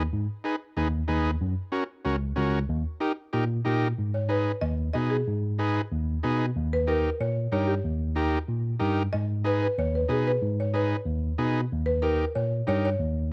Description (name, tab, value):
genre	latin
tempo	186 BPM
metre	4/4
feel	straight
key	G# harmonic minor from 4.0 s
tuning	A4 = 440 Hz
part	overdriven combo organ	accompaniment	0.0-12.9 s	C#4 to B4	-31 LUFS	equal	none
part	tine electric piano	bass	0.0-13.3 s	C#2 to B2	-30 LUFS	equal	none
part	buzzing marimba with medium mallets	melody	4.1-13.3 s	G4 to D#5	-31 LUFS	equal	none
room	small room ambience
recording	dry, close 1970s-style studio recording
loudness	-27 LUFS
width	mono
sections	0.0-4.0 A section; 4.0-13.3 B section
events	none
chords	0.0 G#m; 1.4 F#; 2.7 D#; 4.0 G#m; 6.6 D#; 9.1 G#m; 11.7 D#7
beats	| 0.12 0.45 0.77 1.09 | 1.41 1.73 2.05 2.37 | 2.69 3.02 3.34 3.66 | 3.98 4.30 4.62 4.95 | 5.27 5.59 5.91 6.23 | 6.55 6.88 7.20 7.52 | 7.84 8.16 8.49 8.81 | 9.13 9.45 9.78 10.10 | 10.42 10.74 11.06 11.38 | 11.71 12.03 12.35 12.67 | 12.99 13.32